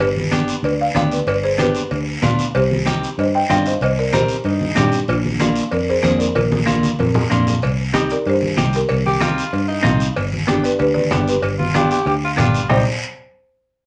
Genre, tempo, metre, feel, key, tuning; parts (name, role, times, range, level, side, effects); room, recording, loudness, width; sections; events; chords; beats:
latin, cumbia; 189 BPM; 4/4; straight; C minor; A4 = 441 Hz
buzzing marimba with medium mallets; melody; 0.0-12.9 s; D4 to G5; -23 LUFS; equal
fingered electric bass; bass; 0.0-12.8 s; G1 to G2; -24 LUFS; equal
congas; percussion; 0.0-12.8 s; -24 LUFS; equal
cowbell and timbales; percussion; 0.0-12.8 s; -29 LUFS; equal
guiro; percussion; 0.0-12.8 s; -32 LUFS; equal
clean electric guitar; accompaniment; 0.3-12.8 s; Bb3 to Bb4; -23 LUFS; equal
growling tenor saxophone; second line; 4.5-5.0, 9.1-12.8 s; Eb4 to G4; -24 LUFS; equal
wet studio reverb, RT60 0.5 s; -18 LUFS; mono
0.0-7.6 A section; 7.6-12.7 B section; 12.7-13.9 C section
drum fill 6.4-7.6
0.0 G; 2.5 Cm; 5.1 Bb; 7.6 Cm; 10.2 G7; 12.7 Cm
| 0.01 0.32 0.64 0.96 | 1.28 1.59 1.91 2.23 | 2.55 2.87 3.18 3.50 | 3.82 4.14 4.45 4.77 | 5.09 5.41 5.72 6.04 | 6.36 6.68 6.99 7.31 | 7.63 7.95 8.26 8.58 | 8.90 9.22 9.53 9.85 | 10.17 10.49 10.80 11.12 | 11.44 11.75 12.07 12.39 | 12.71